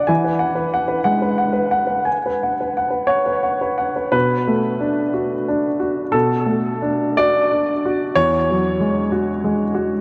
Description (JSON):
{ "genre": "neoclassical minimalist piano", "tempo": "60 BPM (dotted quarters)", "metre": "6/8", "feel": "uneven beats, rubato", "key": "B dorian", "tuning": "A4 = 440 Hz", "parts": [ { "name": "warm baby grand piano", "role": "solo", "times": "0.0-10.0 s", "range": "E2 to A5", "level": "-19 LUFS", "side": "equal", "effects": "tape echo" } ], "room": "wet huge ambient reverb, RT60 4.2 s", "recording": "dreamy mix soaked in reverb", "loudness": "-19 LUFS", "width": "mono", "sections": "0.0-4.1 A section; 4.1-10.0 B section", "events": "none", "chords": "0.1 Eadd9; 4.1 Bm7; 8.2 Eadd9", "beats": "| 0.09 1.06 | 2.06 3.12 | 4.14 5.14 | 6.13 7.18 | 8.15 9.11" }